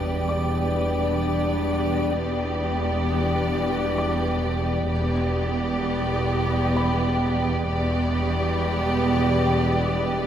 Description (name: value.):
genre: cinematic, suspense film score.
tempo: 65 BPM.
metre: 3/4.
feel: straight.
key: E minor.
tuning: A4 = 440 Hz.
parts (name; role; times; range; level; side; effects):
rich chamber violin section; melody; 0.0-10.3 s; D5; -32 LUFS; left 1 dB; none.
rich chamber violin section; second line; 0.0-10.3 s; G4; -29 LUFS; equal; none.
rich chamber viola section; accompaniment; 0.0-10.3 s; B3; -30 LUFS; right 1 dB; none.
icy glass pad; sustained chords; 0.0-10.3 s; B4 to G5; -32 LUFS; right 2 dB; chorus, built-in reverb.
mellow French horn section; sustained chords; 0.0-10.3 s; G3 to D4; -30 LUFS; left 1 dB; none.
rich chamber cello section; bass; 0.0-10.3 s; E2; -30 LUFS; equal; none.
rich chamber double bass section; bass; 0.0-10.3 s; E1; -29 LUFS; right 1 dB; none.
metallic inharmonic drone; drone; 0.0-10.3 s; E2; -30 LUFS; left 1 dB; chorus, built-in reverb.
impact; sound effects; 0.0-2.1 s; none; -42 LUFS; left 1 dB; none.
felt-muted upright piano; texture; 0.3-10.3 s; B4 to D6; -37 LUFS; left 1 dB; none.
room: wet scoring stage reverb, RT60 1.7 s.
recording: heard from further back in the room.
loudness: -21 LUFS.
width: side -10 dB against mid.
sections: 0.0-10.3 A section.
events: band accent 0.0; impact 0.0-2.1.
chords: 0.0 Em7.